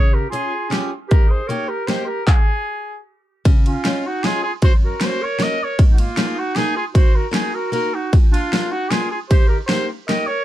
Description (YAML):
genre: alpine folk, alpine dance band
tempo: 154 BPM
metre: 3/4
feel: straight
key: Db major from 3.5 s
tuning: A4 = 441 Hz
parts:
  - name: mellow trumpet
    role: melody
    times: 0.0-10.4 s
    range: F4 to Eb5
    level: -23 LUFS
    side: equal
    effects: none
  - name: warm clarinet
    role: second line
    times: 0.0-10.4 s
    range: Bb3 to Bb4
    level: -27 LUFS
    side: right 5 dB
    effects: dub echo
  - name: picked steel-string acoustic guitar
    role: accompaniment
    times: 0.0-10.3 s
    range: Gb2 to Ab4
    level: -27 LUFS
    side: left 4 dB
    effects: none
  - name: big-room dance drum kit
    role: drums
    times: 0.3-10.2 s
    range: handclaps, hi-hat, kick drum, ride cymbal, snare drum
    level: -15 LUFS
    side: equal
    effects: none
room: little or no reverb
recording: dark, warm production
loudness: -16 LUFS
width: side -13 dB against mid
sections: 0.0-3.5 A section; 3.5-10.4 B section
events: kick and snare drop out 7.7-8.1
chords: 0.0 Db; 1.1 Eb; 2.3 N.C.; 3.5 Db; 4.6 Gb; 5.8 Absus2; 7.0 Ebm; 8.1 Bb; 9.3 Eb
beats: 0.33 0.72 | 1.11 1.50 1.89 | 2.27 2.66 3.06 | 3.45 3.85 4.24 | 4.63 5.01 5.40 | 5.79 6.18 6.56 | 6.95 7.34 7.73 | 8.13 8.52 8.91 | 9.31 9.70 10.09